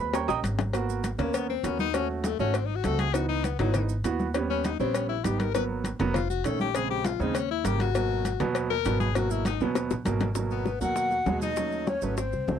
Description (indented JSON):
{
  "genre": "Afro-Cuban jazz",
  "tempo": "200 BPM",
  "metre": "4/4",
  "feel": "straight",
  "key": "G# minor",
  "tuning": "A4 = 439 Hz",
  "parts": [
    { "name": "warm baby grand piano", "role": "accompaniment", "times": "0.0-12.6 s", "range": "B2 to D#6", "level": "-30 LUFS", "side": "right 6 dB", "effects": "none" },
    { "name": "upright bass", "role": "bass", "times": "0.0-12.6 s", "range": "E#1 to D#2", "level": "-31 LUFS", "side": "equal", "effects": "none" },
    { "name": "congas", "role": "percussion", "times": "0.1-12.6 s", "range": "none", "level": "-34 LUFS", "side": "left 1 dB", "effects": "none" },
    { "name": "cowbell and bongos", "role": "percussion", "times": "0.1-12.6 s", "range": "none", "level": "-33 LUFS", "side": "left 8 dB", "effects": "none" },
    { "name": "maracas", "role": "percussion", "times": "0.1-12.6 s", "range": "none", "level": "-44 LUFS", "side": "right 22 dB", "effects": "none" },
    { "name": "clear tenor saxophone", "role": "second line", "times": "1.2-12.6 s", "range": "F#3 to B4", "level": "-30 LUFS", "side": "left 16 dB", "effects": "none" },
    { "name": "breathy hollow jazz flute", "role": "melody", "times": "10.5-12.6 s", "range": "B4 to F#5", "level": "-30 LUFS", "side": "equal", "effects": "none" }
  ],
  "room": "light reverb",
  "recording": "dry, close 1970s-style studio recording",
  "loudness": "-25 LUFS",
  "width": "side -8 dB against mid",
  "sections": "0.7-10.4 A section; 10.4-12.6 B section",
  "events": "drum fill 0.1-0.7, 9.8-10.4; tenor saxophone solo 0.7-10.4",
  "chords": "0.1 D#7; 0.7 G#m7; 1.9 D#m7b5; 2.5 G#7b9; 3.1 C#m7; 4.3 D#7b13; 5.5 G#m7; 6.1 Faug7; 6.7 A#m7; 7.4 D#7; 8.0 G#m7; 11.6 D#m7b5",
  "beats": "0.14 0.44 | 0.74 1.04 1.34 1.64 | 1.94 2.24 2.54 2.84 | 3.14 3.44 3.74 4.04 | 4.34 4.65 4.95 5.25 | 5.55 5.85 6.15 6.45 | 6.75 7.05 7.35 7.65 | 7.95 8.25 8.55 8.85 | 9.15 9.46 9.76 10.06 | 10.36 10.66 10.96 11.27 | 11.57 11.87 12.17 12.48"
}